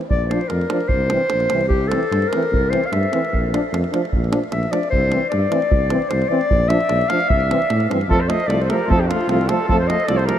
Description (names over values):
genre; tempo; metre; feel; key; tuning
balkan folk, Balkan brass band; 151 BPM; 2/4; straight; C mixolydian; A4 = 440 Hz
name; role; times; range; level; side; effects
davul; percussion; 0.0-10.4 s; none; -24 LUFS; right 1 dB; none
warm clarinet; second line; 0.1-10.4 s; C4 to F5; -21 LUFS; left 2 dB; none
mellow tuba; bass; 0.1-10.3 s; Bb1 to A2; -21 LUFS; equal; none
clear French horn; accompaniment; 0.3-10.4 s; A3 to D4; -26 LUFS; left 4 dB; none
warm euphonium; accompaniment; 0.3-10.4 s; E3 to F3; -26 LUFS; right 5 dB; none
warm flugelhorn; melody; 8.1-10.4 s; F4 to Eb5; -20 LUFS; right 1 dB; tape echo
room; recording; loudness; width
moderate huge ambient reverb, RT60 7.6 s; dreamy mix soaked in reverb; -16 LUFS; side -10 dB against mid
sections
0.0-8.1 A section; 8.1-10.4 B section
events
clarinet solo 0.0-8.1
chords
0.1 Bb; 0.9 C; 3.3 Bb; 4.9 C; 6.5 Bb; 7.3 C; 8.1 F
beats
| 0.12 0.52 | 0.92 1.33 | 1.73 2.13 | 2.53 2.93 | 3.33 3.73 | 4.13 4.53 | 4.93 5.33 | 5.73 6.12 | 6.52 6.92 | 7.31 7.71 | 8.11 8.51 | 8.90 9.30 | 9.70 10.09